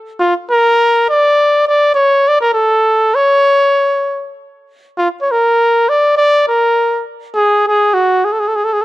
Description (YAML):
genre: mexican folk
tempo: 101 BPM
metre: 4/4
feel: swing 55% on 8ths, rubato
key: unclear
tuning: A4 = 440 Hz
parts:
  - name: clear trumpet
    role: solo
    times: 0.2-8.8 s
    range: F4 to D5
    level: -10 LUFS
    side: equal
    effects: none
room: studio ambience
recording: dry, close 1970s-style studio recording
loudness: -10 LUFS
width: side -17 dB against mid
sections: 0.0-8.8 A section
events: none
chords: none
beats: | 0.20 0.79 1.38 1.97 | 2.57 3.17 3.76 4.37 | 4.97 5.57 6.17 6.76 | 7.35 7.94 8.52